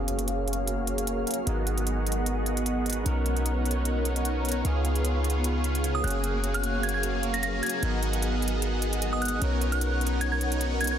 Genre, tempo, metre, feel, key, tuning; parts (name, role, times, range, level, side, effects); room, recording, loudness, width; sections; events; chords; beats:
future bass; 151 BPM; 4/4; swing 54% on 16ths, half-time; F# major; A4 = 439 Hz
overdriven tine electric piano; accompaniment; 0.0-11.0 s; A#3 to E#5; -35 LUFS; right 2 dB; tape echo
shimmering ambient pad; sustained chords; 0.0-11.0 s; C#3 to E#5; -36 LUFS; left 1 dB; chorus, built-in reverb, phaser
supersaw chords; riff; 0.0-11.0 s; A#3 to F#5; -31 LUFS; right 1 dB; lush chorus, low-pass filter, tape echo
warm 808-style bass; bass; 0.0-11.0 s; F#1 to C#2; -28 LUFS; equal
electronic hi-hat; drums; 0.1-11.0 s; -33 LUFS; right 1 dB
glassy synth bell; melody; 5.9-11.0 s; D#6 to A#6; -31 LUFS; right 1 dB; chorus, digital delay
light reverb; dense, heavily limited modern master; -25 LUFS; side -9 dB against mid
0.0-11.0 A section
filter sweep on supersaw synth 0.0-11.0
0.0 F#maj9; 1.5 G#m7; 3.1 Bmaj9; 4.6 C#7; 6.0 F#maj9; 7.8 G#m7; 9.4 Bmaj9
0.28 0.67 1.07 | 1.47 1.87 2.26 2.66 | 3.06 3.46 3.85 4.25 | 4.65 5.04 5.44 5.84 | 6.24 6.63 7.03 7.43 | 7.83 8.22 8.62 9.02 | 9.42 9.81 10.21 10.61